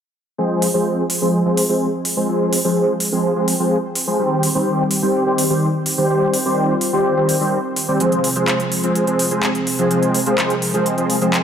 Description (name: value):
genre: EDM, festival progressive house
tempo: 126 BPM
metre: 4/4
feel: straight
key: F minor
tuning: A4 = 440 Hz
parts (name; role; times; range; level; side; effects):
- lush unison pad; sustained chords; 0.4-11.4 s; C3 to C5; -24 LUFS; equal; chorus, vintage 12-bit sampler grit
- supersaw chords; riff; 0.4-11.4 s; Eb3 to C5; -17 LUFS; equal; analog chorus, low-pass filter, digital delay
- big-room dance drum kit; drums; 0.6-11.4 s; handclaps, hi-hat; -22 LUFS; right 1 dB; small room ambience
room: moderate lush hall reverb, RT60 1.9 s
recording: none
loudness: -16 LUFS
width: side -8 dB against mid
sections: 0.4-11.4 A section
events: none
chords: 0.4 Fm; 4.2 Cm; 8.0 Fm/C